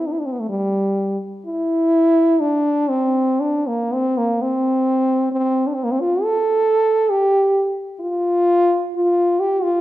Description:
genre	classical, free, expressive piece for unaccompanied French horn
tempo	57-70 BPM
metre	3/4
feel	rubato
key	C major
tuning	A4 = 440 Hz
part	mellow French horn	solo	0.0-9.8 s	G3 to A4	-16 LUFS	equal	none
room	wet recital hall reverb, RT60 1.4 s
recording	dark, warm production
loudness	-16 LUFS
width	side -15 dB against mid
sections	0.0-9.8 A section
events	none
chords	none

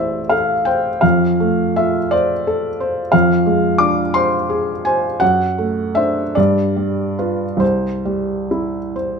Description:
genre	classical, romantic nocturne for solo piano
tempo	44-60 BPM (dotted quarters)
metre	12/8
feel	rubato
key	unclear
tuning	A4 = 440 Hz
part	felt-muted upright piano	solo	0.0-9.2 s	A1 to D6	-15 LUFS	equal	none
room	moderate large studio reverb, RT60 0.8 s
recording	none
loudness	-15 LUFS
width	side -5 dB against mid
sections	0.0-9.2 A section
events	none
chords	0.0 Am; 1.0 Dm7/F; 3.1 Dm7b5/F; 5.2 D7/F#; 6.4 G7; 7.6 C

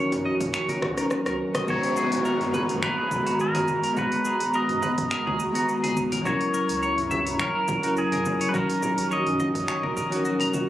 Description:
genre	sunset chillout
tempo	105 BPM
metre	4/4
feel	swing 54% on 16ths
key	G# minor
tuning	A4 = 442 Hz
part	bell-like tine electric piano	accompaniment	0.0-10.7 s	F#3 to A#5	-28 LUFS	equal	auto-pan, shimmer reverb
part	airy breathy pad	sustained chords	0.0-10.7 s	D#3 to A#5	-30 LUFS	right 1 dB	chorus, shimmer reverb
part	clean electric guitar	arpeggios	0.0-10.7 s	F#4 to A#5	-31 LUFS	left 1 dB	vintage 12-bit sampler grit, tape echo, shimmer reverb
part	round analog bass	bass	0.0-10.7 s	D#1 to D#2	-39 LUFS	equal	none
part	deep house drum kit	drums	0.1-10.7 s	finger snaps, hi-hat, rim click, shaker, toms	-33 LUFS	equal	none
part	congas	percussion	0.1-10.7 s	none	-35 LUFS	right 1 dB	none
part	electronic kick drum	drums	0.4-10.1 s	none	-34 LUFS	equal	none
part	pedal steel guitar	melody	1.7-10.5 s	G#4 to D#5	-28 LUFS	equal	digital delay, shimmer reverb
part	downlifter	sound effects	1.7-6.3 s	none	-33 LUFS	right 1 dB	none
room	moderate plate reverb, RT60 2.2 s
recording	recorded on a phone in the room, club reverb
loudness	-22 LUFS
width	side -13 dB against mid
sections	0.0-1.7 A section; 1.7-10.7 B section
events	drum fill 0.8-1.7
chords	0.0 D#m7; 1.7 G#m9; 6.3 F#7; 8.5 D#m7

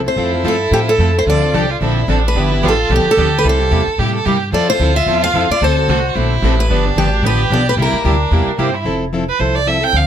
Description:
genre	acoustic string swing (jazz manouche)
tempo	221 BPM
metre	4/4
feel	swing 57% on 8ths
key	F major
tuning	A4 = 441 Hz
part	picked plugged-in steel-string acoustic guitar	accompaniment	0.0-10.1 s	C3 to A4	-21 LUFS	left 2 dB	none
part	upright bass	bass	0.0-10.1 s	F1 to A2	-17 LUFS	equal	none
part	picked steel-string acoustic guitar	melody	0.1-8.6 s	G4 to F5	-17 LUFS	left 1 dB	none
part	rich violin	second line	0.2-10.1 s	C4 to G5	-20 LUFS	right 5 dB	none
part	picked plugged-in steel-string acoustic guitar	accompaniment	0.2-8.7 s	C3 to A4	-22 LUFS	right 4 dB	none
room	little or no reverb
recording	close, detailed microphones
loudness	-12 LUFS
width	side -9 dB against mid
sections	0.2-8.9 A section; 8.9-10.1 B section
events	violin solo 8.9-10.1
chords	0.2 F; 1.3 Dm7; 2.4 G7; 3.4 C7; 4.5 Fmaj7; 5.6 D7; 6.7 G7; 7.8 C7; 8.9 Fmaj7

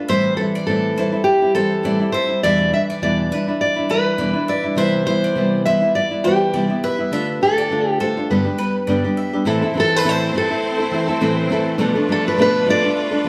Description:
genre	pop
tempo	102 BPM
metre	4/4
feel	swing 55% on 16ths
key	A minor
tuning	A4 = 440 Hz
part	nylon-string guitar	accompaniment	0.0-13.3 s	E2 to A4	-22 LUFS	equal	none
part	fingerpicked steel-string acoustic guitar	melody	0.1-13.3 s	G4 to E5	-21 LUFS	equal	none
part	bowl-back mandolin	arpeggios	0.1-9.3 s	B4 to E5	-33 LUFS	equal	none
part	bright studio string section	sustained chords	9.5-13.3 s	A3 to C5	-28 LUFS	equal	none
room	wet large studio reverb, RT60 1.2 s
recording	band playing live in one room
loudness	-18 LUFS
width	mono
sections	0.0-9.5 A section; 9.5-13.3 B section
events	none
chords	0.1 Am7; 2.4 Em7; 4.8 Cmaj7; 7.1 Dm; 8.3 G; 9.5 Am; 11.8 Bm7b5

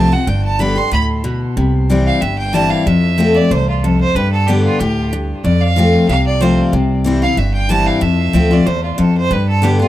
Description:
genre	bluegrass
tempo	186 BPM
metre	4/4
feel	straight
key	unclear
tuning	A4 = 440 Hz
part	bright fiddle	melody	0.0-9.9 s	F4 to C6	-19 LUFS	right 3 dB	tape echo
part	picked steel-string acoustic guitar	accompaniment	0.0-9.9 s	E2 to G4	-15 LUFS	left 2 dB	none
part	upright bass	bass	0.0-9.8 s	G1 to G2	-17 LUFS	right 1 dB	none
room	small room ambience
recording	dry, close 1970s-style studio recording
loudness	-12 LUFS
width	side -13 dB against mid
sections	0.0-1.6 A section; 1.6-9.9 B section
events	none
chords	0.3 G; 1.6 C; 2.9 F; 4.2 G; 5.4 F; 6.7 C; 8.0 F; 9.3 G

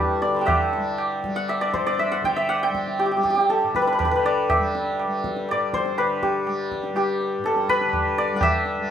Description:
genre	indian classical, Hindustani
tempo	121 BPM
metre	4/4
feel	straight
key	G raga bilaval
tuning	A4 = 439 Hz
part	santur	melody	0.0-8.9 s	D4 to C6	-21 LUFS	equal	none
part	tanpura	drone	0.0-8.9 s	G2 to G3	-32 LUFS	left 2 dB	none
part	tabla	percussion	0.2-8.8 s	none	-28 LUFS	right 2 dB	none
room	moderate studio ambience, RT60 0.5 s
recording	band playing live in one room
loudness	-20 LUFS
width	side -9 dB against mid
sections	0.0-8.9 A section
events	speeding up 0.0-8.9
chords	none

